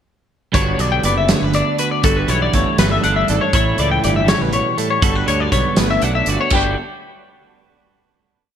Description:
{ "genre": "math rock and midwest emo", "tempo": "80 BPM (dotted quarters)", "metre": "6/8", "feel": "straight", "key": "G lydian", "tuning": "A4 = 440 Hz", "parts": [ { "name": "twelve-string electric guitar", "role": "accompaniment", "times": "0.5-6.8 s", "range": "D2 to A4", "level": "-20 LUFS", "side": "right 6 dB", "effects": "spring reverb" }, { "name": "twelve-string electric guitar", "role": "arpeggios", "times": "0.5-6.8 s", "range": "G4 to G5", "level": "-19 LUFS", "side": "left 6 dB", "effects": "lush chorus" }, { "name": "loose indie drum kit", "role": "drums", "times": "0.5-6.6 s", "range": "crash cymbal, hi-hat, kick drum, snare drum", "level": "-19 LUFS", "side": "right 1 dB", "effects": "gated reverb" }, { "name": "fuzz fingered electric bass", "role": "bass", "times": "0.6-6.7 s", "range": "F#1 to D2", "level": "-21 LUFS", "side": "equal", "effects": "overdrive" } ], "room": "light reverb, small room ambience", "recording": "bright 1980s-style digital production", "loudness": "-14 LUFS", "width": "side -9 dB against mid", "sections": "0.5-6.5 A section; 6.5-8.0 final chord", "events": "none", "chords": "0.5 Gmaj7; 2.0 Em11/G; 3.5 A7; 5.0 Gmaj7" }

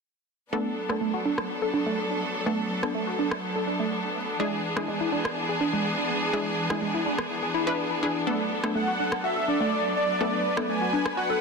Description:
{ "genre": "progressive house", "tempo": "124 BPM", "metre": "4/4", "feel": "straight", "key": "B dorian", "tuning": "A4 = 442 Hz", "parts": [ { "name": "bright studio string section", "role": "sustained chords", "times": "0.5-11.4 s", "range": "E3 to B4", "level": "-29 LUFS", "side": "equal", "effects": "none" }, { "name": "glassy wavetable pluck", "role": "arpeggios", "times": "0.5-11.4 s", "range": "G#3 to B4", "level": "-29 LUFS", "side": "right 1 dB", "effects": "chorus, tape echo" }, { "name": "wide unison pluck", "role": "stabs", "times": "0.5-11.4 s", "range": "B3 to B4", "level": "-33 LUFS", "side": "left 3 dB", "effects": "tape echo" }, { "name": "electronic rim click", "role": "drums", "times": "0.9-11.1 s", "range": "none", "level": "-36 LUFS", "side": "equal", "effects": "soft clipping on snare, low-pass filter on snare" }, { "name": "soft supersaw", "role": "melody", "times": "8.8-11.4 s", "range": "D5 to G#5", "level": "-26 LUFS", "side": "equal", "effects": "tape echo" } ], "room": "light reverb", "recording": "dense, heavily limited modern master", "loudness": "-24 LUFS", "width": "side -4 dB against mid", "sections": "0.5-11.4 A section", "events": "filter sweep on drum 0.5-11.4; filter sweep on synth arpeggio sound 0.5-11.4", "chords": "0.5 Bm7; 4.4 E7; 8.3 Bm7" }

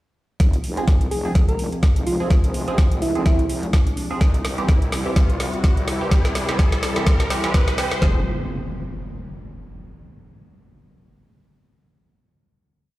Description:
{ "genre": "bass house", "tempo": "126 BPM", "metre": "4/4", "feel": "swing 56% on 16ths", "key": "F harmonic minor", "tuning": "A4 = 438 Hz", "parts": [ { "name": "sweeping resonant pad", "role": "sustained chords", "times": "0.4-8.2 s", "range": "C3 to F4", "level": "-28 LUFS", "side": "left 1 dB", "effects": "chorus, sidechain pumping" }, { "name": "wobble bass", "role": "bass", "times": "0.4-8.2 s", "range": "F1 to E2", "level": "-30 LUFS", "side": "equal", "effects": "chorus, overdrive, sidechain pumping, high-pass filter" }, { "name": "garage drum kit", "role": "drums", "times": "0.4-8.1 s", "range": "kick drum, snare drum", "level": "-16 LUFS", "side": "equal", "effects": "overdrive" }, { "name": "garage drum kit", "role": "drums", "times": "0.4-8.0 s", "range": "hi-hat, snare drum", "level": "-28 LUFS", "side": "equal", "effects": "overdrive, high-pass filter on snare, high-pass filter on hats" }, { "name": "riser and impact", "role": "sound effects", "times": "1.9-9.9 s", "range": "none", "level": "-31 LUFS", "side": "equal", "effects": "none" }, { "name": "band-passed chord stab", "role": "stabs", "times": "0.8-8.2 s", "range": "E3 to Ab4", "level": "-30 LUFS", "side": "right 3 dB", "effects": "phaser, sidechain pumping, tape echo" }, { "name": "soft struck synth lead", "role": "melody", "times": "1.1-3.7 s", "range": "E4 to Bb4", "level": "-27 LUFS", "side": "right 1 dB", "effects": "chorus, tape echo" } ], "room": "light reverb", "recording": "played on a big sound system in a bare room, large studio reverb", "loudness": "-17 LUFS", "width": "side -17 dB against mid", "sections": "0.4-8.0 build; 8.0-9.9 final chord", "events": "build-up 0.4-8.0; drum fill 0.4-8.0; riser 1.9-8.0", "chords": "0.4 Fm; 4.2 C; 8.0 Fm" }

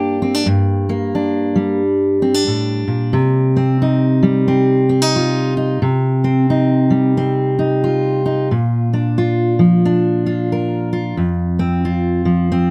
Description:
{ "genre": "folk, solo fingerstyle acoustic guitar", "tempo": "90 BPM", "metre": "4/4", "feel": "swing 62% on 8ths", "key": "unclear", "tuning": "A4 = 441 Hz", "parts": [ { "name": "fingerpicked steel-string acoustic guitar", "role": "solo", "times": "0.0-12.7 s", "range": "F2 to Bb4", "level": "-16 LUFS", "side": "equal", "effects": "none" } ], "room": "little or no reverb", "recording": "close, detailed microphones", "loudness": "-16 LUFS", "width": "mono", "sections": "0.0-12.7 A section", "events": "none", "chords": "0.0 Gm; 3.1 Cm; 8.5 Bb; 11.2 F5" }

